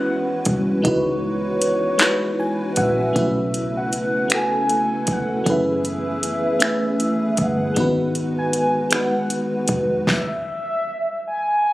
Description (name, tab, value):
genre	slow six-eight R&B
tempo	52 BPM (dotted quarters)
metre	6/8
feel	straight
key	unclear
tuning	A4 = 442 Hz
part	mellow horn-like synth lead	melody	0.0-11.7 s	C#5 to G#5	-25 LUFS	equal	chorus, phaser, tape echo
part	FM electric piano with soft pad layer	accompaniment	0.0-10.1 s	G#3 to G#5	-21 LUFS	equal	chorus
part	mellow tonewheel organ	sustained chords	0.0-10.0 s	C#3 to G#4	-28 LUFS	equal	chorus vibrato, wide subtle chorus
part	vintage muted fingered electric bass	bass	0.0-10.0 s	E#1 to C#2	-27 LUFS	equal	none
part	smooth R&B drum kit	drums	0.5-10.3 s	finger snaps, handclaps, hi-hat, kick drum, snare drum	-21 LUFS	equal	none
room	light reverb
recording	recorded on a phone in the room, club reverb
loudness	-18 LUFS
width	side -17 dB against mid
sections	0.0-3.2 A section; 3.2-11.7 B section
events	FM electric piano fill 2.0-3.2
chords	0.0 F#7sus4; 0.8 C#m11; 3.2 B9sus4; 5.5 F#m11; 7.8 G#m7; 10.1 N.C.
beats	| 0.85 2.00 | 3.15 4.31 | 5.46 6.62 | 7.77 8.92 | 10.08 11.23